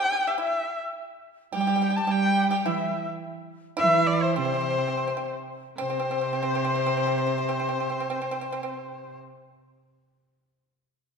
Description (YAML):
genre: chinese traditional, Chinese chamber ensemble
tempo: 74-108 BPM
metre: 2/4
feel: straight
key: C gong mode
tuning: A4 = 443 Hz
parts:
  - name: warm erhu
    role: melody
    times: 0.0-9.2 s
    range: C5 to A5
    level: -28 LUFS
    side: equal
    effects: none
  - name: mellow large dizi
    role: second line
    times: 0.0-9.2 s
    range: C5 to A5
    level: -30 LUFS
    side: left 6 dB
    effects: none
  - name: pipa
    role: second line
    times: 0.0-8.7 s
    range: C4 to G4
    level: -33 LUFS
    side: right 4 dB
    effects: none
  - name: warm cello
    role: second line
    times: 1.5-9.2 s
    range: C3 to G3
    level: -28 LUFS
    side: right 4 dB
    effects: none
room: wet scoring stage reverb, RT60 1.8 s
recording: dark, warm production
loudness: -23 LUFS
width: side -6 dB against mid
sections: 0.0-5.8 A section; 5.8-9.0 B section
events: slowing down 3.2-5.8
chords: none